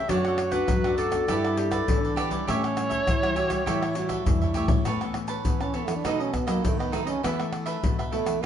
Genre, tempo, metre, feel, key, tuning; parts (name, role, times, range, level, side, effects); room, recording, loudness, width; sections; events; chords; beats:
samba and choro; 101 BPM; 4/4; straight; A major from 4.9 s; A4 = 440 Hz
warm clarinet; melody; 0.0-4.2 s; G4 to E5; -28 LUFS; equal
cavaquinho; accompaniment; 0.0-8.5 s; D4 to A5; -32 LUFS; right 4 dB
nylon-string guitar; accompaniment; 0.0-8.5 s; F#2 to A4; -34 LUFS; left 5 dB
warm trombone; second line; 0.1-8.5 s; A3 to F#4; -29 LUFS; right 3 dB
nylon-string guitar; bass; 0.1-8.5 s; F#2 to F#3; -32 LUFS; left 2 dB
tube shaker, surdo, pandeiro and tamborim; percussion; 0.1-8.4 s; -28 LUFS; left 1 dB
moderate large studio reverb, RT60 1.1 s; band playing live in one room, nothing above 10.5 kHz; -23 LUFS; side -9 dB against mid
0.0-4.9 A section; 4.9-8.5 B section
drum fill 4.1-4.9; trombone solo 4.9-8.5
0.1 D/F#; 1.3 Gadd9; 2.5 A7; 4.9 Aadd9; 6.0 B7; 7.2 Esus4
| 0.10 0.69 1.29 1.89 | 2.48 3.07 3.67 4.26 | 4.86 5.45 6.05 6.64 | 7.24 7.83 8.43